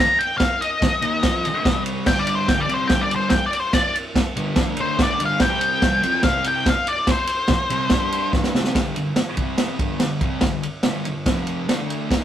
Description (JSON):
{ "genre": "garage rock duo or trio", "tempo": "144 BPM", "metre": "4/4", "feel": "straight", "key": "unclear", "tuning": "A4 = 441 Hz", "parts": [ { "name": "octave-fuzz lead guitar", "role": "melody", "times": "0.0-8.3 s", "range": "C5 to Bb5", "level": "-21 LUFS", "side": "left 2 dB", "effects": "distortion" }, { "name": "vintage drum kit", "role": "drums", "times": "0.2-12.2 s", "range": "crash cymbal, kick drum, ride cymbal, snare drum", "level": "-21 LUFS", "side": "right 1 dB", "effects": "none" }, { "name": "thick fuzz guitar", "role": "riff", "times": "0.8-12.2 s", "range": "F2 to G4", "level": "-26 LUFS", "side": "equal", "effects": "distortion" } ], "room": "light reverb", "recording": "rough rehearsal-room recording, tube saturation", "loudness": "-18 LUFS", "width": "side -10 dB against mid", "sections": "0.0-8.7 A section; 8.7-12.2 B section", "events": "lead electric guitar solo 0.0-8.7; drum fill 8.3-8.7", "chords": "0.0 Eb5; 1.7 C5; 2.1 G5; 4.6 D5; 5.2 G5; 5.4 C5; 7.9 G5; 8.5 C5; 8.7 G5; 9.4 C5; 9.8 G5; 11.3 F5; 11.7 D5" }